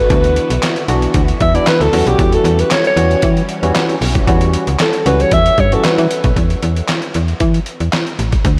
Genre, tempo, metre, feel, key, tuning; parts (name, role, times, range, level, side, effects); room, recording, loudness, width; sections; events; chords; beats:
early-eighties boogie funk; 115 BPM; 4/4; straight; E dorian; A4 = 440 Hz
breathy alto saxophone; melody; 0.0-6.4 s; G4 to E5; -19 LUFS; equal; tape echo
phased string machine; sustained chords; 0.0-6.3 s; D3 to F#4; -28 LUFS; equal
slap-like FM bass; bass; 0.0-8.6 s; A1 to E3; -18 LUFS; equal
barky tine electric piano; accompaniment; 0.1-6.0 s; E3 to F#4; -22 LUFS; equal; overdrive, analog chorus
boom bap sampler-style drum kit; drums; 0.1-8.6 s; handclaps, hi-hat, kick drum, snare drum; -19 LUFS; equal; overdrive
moderate huge ambient reverb, RT60 4.7 s; dreamy mix soaked in reverb; -14 LUFS; mono
0.0-6.4 A section; 6.4-8.6 B section
alto saxophone solo 0.0-6.4
0.0 D69; 1.9 Em69; 6.4 N.C.
| 0.10 0.62 1.15 1.67 | 2.19 2.71 3.23 3.75 | 4.28 4.80 5.32 5.84 | 6.36 6.89 7.41 7.93 | 8.45